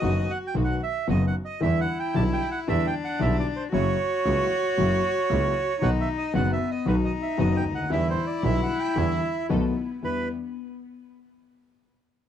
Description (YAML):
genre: tango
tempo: 114 BPM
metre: 4/4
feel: rubato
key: E minor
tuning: A4 = 440 Hz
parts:
  - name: bandoneon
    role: melody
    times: 0.0-10.3 s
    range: B4 to A5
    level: -28 LUFS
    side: right 6 dB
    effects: none
  - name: warm cello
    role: second line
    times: 0.0-10.3 s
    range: B3 to F#4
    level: -30 LUFS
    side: left 6 dB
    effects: tape echo
  - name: dark concert grand piano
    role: accompaniment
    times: 0.0-10.3 s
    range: F#1 to F#4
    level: -28 LUFS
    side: left 4 dB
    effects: none
  - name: muted studio string section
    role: stabs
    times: 0.0-10.3 s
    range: A#3 to A4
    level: -37 LUFS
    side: right 3 dB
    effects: none
  - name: clear double bass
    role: bass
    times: 0.0-10.2 s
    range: F#1 to E2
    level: -27 LUFS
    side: right 2 dB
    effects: none
room: light reverb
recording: dry, close 1970s-style studio recording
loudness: -22 LUFS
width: side -9 dB against mid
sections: 0.0-10.0 A section; 10.0-12.1 B section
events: none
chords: 0.0 B; 1.6 Em7; 3.7 F#7; 5.8 B; 7.9 Em7; 9.5 B7; 10.0 Em7